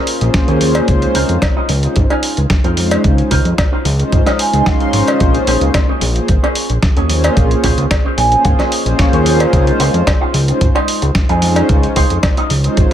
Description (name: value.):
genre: nu-disco, nu disco.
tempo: 111 BPM.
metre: 4/4.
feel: straight.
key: Db major.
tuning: A4 = 440 Hz.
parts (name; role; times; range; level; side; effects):
electric guitar with an envelope filter; riff; 0.0-12.8 s; Db4 to Ab5; -20 LUFS; right 2 dB; wide subtle chorus, analog delay.
dusty soul sampler-style drum kit; drums; 0.1-12.9 s; hi-hat, snare drum; -21 LUFS; equal; analog delay.
warm analog pad; accompaniment; 0.2-12.8 s; Ab3 to C6; -17 LUFS; equal; chorus, analog delay.
fat analog bass; bass; 0.2-12.9 s; Ab1 to F2; -15 LUFS; equal; none.
electronic kick drum; drums; 0.3-12.9 s; none; -15 LUFS; equal; none.
cowbell; percussion; 0.8-12.3 s; none; -21 LUFS; left 1 dB; none.
room: light reverb.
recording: echo-heavy mix.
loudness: -11 LUFS.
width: side -10 dB against mid.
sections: 0.0-12.9 A section.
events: filter sweep on clean electric guitar 0.0-12.9; clean electric guitar fill 4.1-5.2, 7.9-9.5, 12.8.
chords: 0.0 Bbm9; 0.9 Dbmaj9; 5.2 Bbm9; 9.5 Dbmaj9.